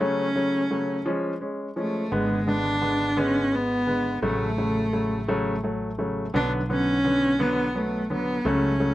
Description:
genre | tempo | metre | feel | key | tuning
pop | 57 BPM (dotted quarters) | 6/8 | straight | F# minor | A4 = 440 Hz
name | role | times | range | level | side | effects
warm cello | melody | 0.0-8.9 s | G#3 to D4 | -25 LUFS | equal | none
clear grand piano | accompaniment | 0.0-8.9 s | C#3 to C#4 | -26 LUFS | equal | none
mellow fretless electric bass | bass | 2.1-8.9 s | G#1 to C#2 | -31 LUFS | equal | none
room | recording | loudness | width
little or no reverb | recorded outdoors, with no room sound | -22 LUFS | side -15 dB against mid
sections
0.0-2.1 A section; 2.1-8.9 B section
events
none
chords
0.0 F#m/C#; 1.1 C#; 2.1 G#dim; 4.2 F#m/A; 6.3 Bm

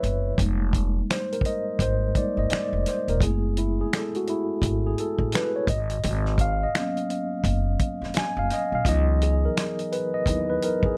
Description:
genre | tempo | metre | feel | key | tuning
R&B, neo-soul | 85 BPM | 4/4 | swing 62% on 16ths | unclear | A4 = 440 Hz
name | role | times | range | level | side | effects
mellow tine electric piano | accompaniment | 0.0-11.0 s | E3 to G#5 | -28 LUFS | equal | none
upright bass | bass | 0.0-10.9 s | Eb1 to E2 | -27 LUFS | equal | none
warm soul drum kit | drums | 0.0-11.0 s | finger snaps, hi-hat, kick drum, snare drum | -28 LUFS | equal | none
room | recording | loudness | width
little or no reverb | dark, warm production | -25 LUFS | mono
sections
0.0-11.0 A section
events
tine electric piano solo 0.0-11.0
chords
0.4 Fm11; 3.2 F#m11; 5.7 G#m11; 8.8 C#m11

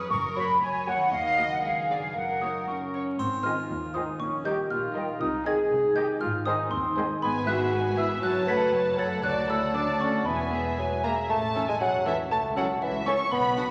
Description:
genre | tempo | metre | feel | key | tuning
cinematic, playful, whimsical film cue | 119 BPM | 2/4 | straight | F# major, Ab major from 3.2 s, A major from 7.2 s | A4 = 440 Hz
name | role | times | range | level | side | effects
rich studio violin section | second line | 0.0-13.6 s | F#4 to F#5 | -40 LUFS | equal | none
concert harp | arpeggios | 0.0-13.7 s | F#2 to E5 | -41 LUFS | equal | none
bright flute section | second line | 0.1-13.6 s | E#5 to C#6 | -32 LUFS | equal | none
rich studio cello section | bass | 0.1-13.7 s | C#2 to C#4 | -42 LUFS | equal | none
rich studio double bass section | bass | 0.1-13.7 s | E1 to D#2 | -41 LUFS | equal | none
rich studio violin section | melody | 0.4-13.7 s | C5 to C#6 | -39 LUFS | equal | none
rich studio viola section | accompaniment | 0.4-13.7 s | F#3 to G#4 | -42 LUFS | equal | none
xylophone with rubber mallets | melody | 2.4-13.7 s | E5 to B6 | -33 LUFS | equal | none
warm cor anglais | second line | 2.4-13.7 s | B3 to E5 | -40 LUFS | equal | none
mellow French horn section | sustained chords | 2.4-13.7 s | B3 to B4 | -32 LUFS | equal | none
triangle | percussion | 3.2-4.2 s | none | -55 LUFS | equal | none
warm bassoon | accompaniment | 3.4-13.7 s | Eb3 to C#4 | -34 LUFS | equal | none
warm clarinet | second line | 3.5-13.7 s | C#4 to E5 | -39 LUFS | equal | none
room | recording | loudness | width
wet scoring stage reverb, RT60 1.8 s | vinyl crackle | -27 LUFS | mono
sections
0.0-3.2 A section; 3.2-11.3 B section; 11.3-13.7 C section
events
none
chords
0.1 F#; 1.1 D#m; 1.6 C#7b9; 2.2 F#; 3.2 Ab; 4.2 Eb/Bb; 5.2 Ab/C; 6.2 Ab; 7.2 E/G#; 8.2 F#m; 9.2 D; 10.3 E; 11.3 A; 12.3 A/C#

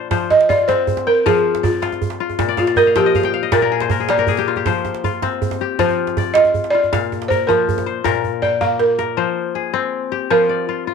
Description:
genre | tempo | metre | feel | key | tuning
west african traditional, West African string and xylophone music | 106 BPM (dotted quarters) | 12/8 | straight | F dorian | A4 = 440 Hz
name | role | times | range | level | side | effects
kora | arpeggios | 0.0-10.9 s | Bb2 to G5 | -20 LUFS | left 11 dB | none
djembe | percussion | 0.1-9.2 s | none | -24 LUFS | right 6 dB | none
balafon | melody | 0.3-10.9 s | F4 to F5 | -16 LUFS | right 2 dB | none
room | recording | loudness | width
moderate spring reverb, RT60 1.2 s, studio ambience | 1960s-style stereo with parts hard left and right | -15 LUFS | side -6 dB against mid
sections
0.1-9.2 A section; 9.2-10.9 B section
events
balafon solo 0.1-9.2; kora fill 2.5-4.7; drum fill 8.2-9.2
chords
0.1 F5; 2.4 Bb5; 4.7 F5; 6.9 Bb; 9.2 Fm

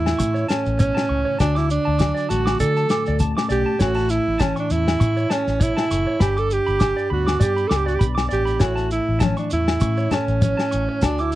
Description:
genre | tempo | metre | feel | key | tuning
highlife guitar band | 100 BPM | 4/4 | swing 55% on 16ths | A mixolydian | A4 = 440 Hz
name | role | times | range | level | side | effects
clear alto saxophone | melody | 0.0-11.4 s | C#4 to A4 | -22 LUFS | right 3 dB | none
fingerpicked steel-string acoustic guitar | accompaniment | 0.0-11.4 s | G2 to F#4 | -28 LUFS | left 4 dB | none
vintage muted fingered electric bass | bass | 0.0-11.4 s | F#1 to D3 | -24 LUFS | equal | none
warm soul drum kit | drums | 0.1-11.2 s | kick drum, snare drum | -21 LUFS | left 1 dB | none
agogo bells | percussion | 0.1-11.2 s | none | -32 LUFS | left 14 dB | none
electric guitar through a small old amp | arpeggios | 0.2-11.3 s | C#5 to D6 | -29 LUFS | right 2 dB | spring reverb, tape echo
shekere | percussion | 0.2-11.4 s | none | -28 LUFS | right 2 dB | none
congas | percussion | 8.6-11.1 s | none | -28 LUFS | left 6 dB | none
room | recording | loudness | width
little or no reverb | dry, close 1970s-style studio recording | -18 LUFS | side -15 dB against mid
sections
0.0-11.4 A section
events
none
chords
0.0 A; 1.4 D; 3.8 A; 6.2 G; 8.6 A

